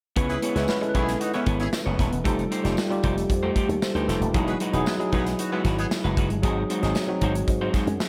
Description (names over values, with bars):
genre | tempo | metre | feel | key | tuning
polished 1980s jazz-funk pop | 115 BPM | 4/4 | straight | C# minor | A4 = 439 Hz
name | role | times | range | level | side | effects
tine electric piano | accompaniment | 0.2-8.1 s | F#3 to C5 | -29 LUFS | equal | subtle chorus
electric guitar at the edge of break-up | riff | 0.2-8.0 s | G#3 to C#5 | -32 LUFS | equal | lush chorus
slap bass with an envelope filter | bass | 0.2-8.0 s | D#1 to G#2 | -30 LUFS | equal | none
modern studio drum kit | drums | 0.2-8.1 s | hi-hat, kick drum, snare drum | -30 LUFS | equal | gated reverb
warm horn section | second line | 0.3-5.9 s | G#3 to B4 | -35 LUFS | equal | none
tambourine | percussion | 0.7-8.1 s | none | -44 LUFS | equal | none
room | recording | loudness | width
light reverb, studio reverb | none | -24 LUFS | mono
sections
0.2-8.1 A section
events
none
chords
0.2 C#m7; 2.3 F9; 4.3 Emaj9; 6.4 G#7